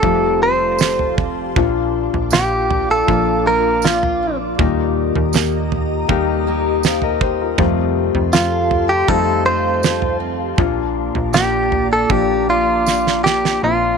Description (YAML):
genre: pop ballad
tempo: 80 BPM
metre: 4/4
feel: straight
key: Bb major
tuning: A4 = 437 Hz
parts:
  - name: direct-recorded clean electric guitar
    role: melody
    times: 0.0-14.0 s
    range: F4 to C5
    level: -16 LUFS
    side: equal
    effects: none
  - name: warm grand piano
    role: accompaniment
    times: 0.0-14.0 s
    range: Bb2 to F5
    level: -21 LUFS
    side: left 15 dB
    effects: none
  - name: glassy FM pad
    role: sustained chords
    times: 0.0-14.0 s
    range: F4 to Eb6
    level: -25 LUFS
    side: left 2 dB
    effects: ensemble chorus, built-in reverb, phaser
  - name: picked steel-string acoustic guitar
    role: arpeggios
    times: 0.0-14.0 s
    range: F2 to G4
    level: -26 LUFS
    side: right 14 dB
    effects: none
  - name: slap-like FM bass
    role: bass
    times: 0.0-14.0 s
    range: F1 to F2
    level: -24 LUFS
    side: right 1 dB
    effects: none
  - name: damped 70s drum kit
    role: drums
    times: 0.0-13.6 s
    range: kick drum, snare drum, toms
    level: -19 LUFS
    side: right 5 dB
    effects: none
  - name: tambourine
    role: percussion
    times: 0.8-13.0 s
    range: none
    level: -30 LUFS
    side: right 18 dB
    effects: none
room: studio ambience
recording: 1960s-style stereo with parts hard left and right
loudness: -14 LUFS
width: side -5 dB against mid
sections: 0.0-13.6 A section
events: drum fill 12.9-13.6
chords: 0.0 Fadd9; 1.6 Bb; 4.6 Eb; 7.6 Fadd9; 10.6 Bb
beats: 0.03 0.79 | 1.56 2.32 3.08 3.84 | 4.59 5.34 6.09 6.84 | 7.59 8.34 9.08 9.83 | 10.58 11.34 12.10 12.87 | 13.63